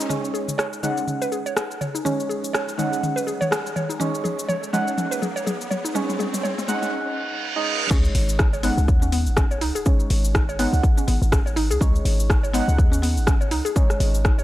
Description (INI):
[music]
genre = afro house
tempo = 123 BPM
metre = 4/4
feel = swing 57% on 16ths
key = unclear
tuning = A4 = 440 Hz
[part]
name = mallet-like synth pluck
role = arpeggios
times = 0.0-14.4 s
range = G#3 to C#5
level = -28 LUFS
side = equal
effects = chorus, sidechain pumping, analog delay
[part]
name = deep mellow chord stab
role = stabs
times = 0.0-14.4 s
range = G#3 to F#5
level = -28 LUFS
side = right 2 dB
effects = chorus, sidechain pumping, analog delay
[part]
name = afro-pop drum kit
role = drums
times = 0.0-14.4 s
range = crash cymbal, hi-hat, rim click, shaker, toms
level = -27 LUFS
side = left 1 dB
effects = none
[part]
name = riser, reverse cymbal and sub drop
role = sound effects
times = 0.0-9.9 s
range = none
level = -31 LUFS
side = right 2 dB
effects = none
[part]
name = warm 808-style bass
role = bass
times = 7.9-14.4 s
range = G#1 to D#2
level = -22 LUFS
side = equal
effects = sidechain pumping
[part]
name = electronic kick drum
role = drums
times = 7.9-14.4 s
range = none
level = -19 LUFS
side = equal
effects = none
[sound]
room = light reverb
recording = dry, gritty hardware recording, high-pass filter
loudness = -19 LUFS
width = side -15 dB against mid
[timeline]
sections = 0.1-7.9 A section; 7.9-14.4 B section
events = build-up 0.1-7.9; drum fill 0.1-6.9; riser 0.1-6.9; filter sweep 0.1-7.9; reverse cymbal 6.9-7.9; drop 7.9-14.4; impact 7.9-9.9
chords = 0.1 C#sus2